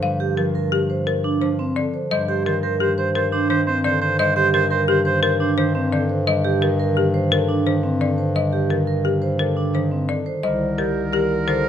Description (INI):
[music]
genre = classical, minimalist pattern music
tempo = 173 BPM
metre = 6/4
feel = straight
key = unclear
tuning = A4 = 440 Hz
[part]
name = folk marimba with hard mallets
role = melody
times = 0.0-11.7 s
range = G4 to F5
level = -24 LUFS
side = left 7 dB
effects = none
[part]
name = concert harp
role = accompaniment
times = 0.0-11.7 s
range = D3 to C4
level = -24 LUFS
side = equal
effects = none
[part]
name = vibraphone with medium mallets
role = arpeggios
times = 0.0-11.7 s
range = C4 to C5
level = -24 LUFS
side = right 5 dB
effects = none
[part]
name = warm bass clarinet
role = bass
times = 0.0-11.7 s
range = C2 to G2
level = -25 LUFS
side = left 2 dB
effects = none
[part]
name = clear oboe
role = second line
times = 2.1-6.0, 10.4-11.7 s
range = Bb4 to C5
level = -23 LUFS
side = right 4 dB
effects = none
[sound]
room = light reverb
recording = close, detailed microphones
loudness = -18 LUFS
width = side -9 dB against mid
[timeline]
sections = 0.0-10.4 A section; 10.4-11.7 B section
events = none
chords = 0.0 Gm7; 2.1 Eb6/G; 10.4 Cm7